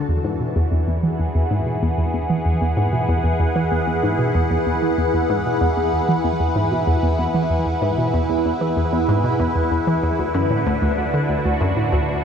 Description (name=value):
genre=ambient, sequencer-driven space music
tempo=95 BPM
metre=4/4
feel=straight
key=unclear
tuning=A4 = 437 Hz
part: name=phased analog pad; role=sustained chords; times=0.0-12.2 s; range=D3 to F#5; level=-21 LUFS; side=equal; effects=phaser, chorus
part: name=hollow square pluck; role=riff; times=0.0-12.1 s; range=D2 to E3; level=-20 LUFS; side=equal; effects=chorus, tape echo
room=moderate huge ambient reverb, RT60 7.4 s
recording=cassette tape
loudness=-17 LUFS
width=side -7 dB against mid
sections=0.1-12.2 A section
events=none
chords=0.1 Eadd9; 10.2 D